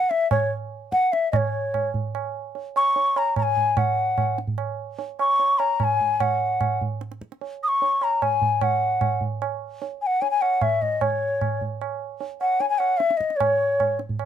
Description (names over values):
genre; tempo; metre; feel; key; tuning
indian classical, Hindustani; 149 BPM; 3/4; straight; C# raga bhimpalasi; A4 = 440 Hz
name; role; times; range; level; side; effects
hollow bansuri; melody; 0.0-14.0 s; C#5 to D#6; -20 LUFS; left 2 dB; none
tabla; percussion; 0.1-14.3 s; none; -26 LUFS; right 6 dB; none
room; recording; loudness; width
light reverb; close, detailed microphones; -20 LUFS; side -9 dB against mid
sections
0.0-1.3 A section; 1.3-11.0 B section; 11.0-14.3 A section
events
none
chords
none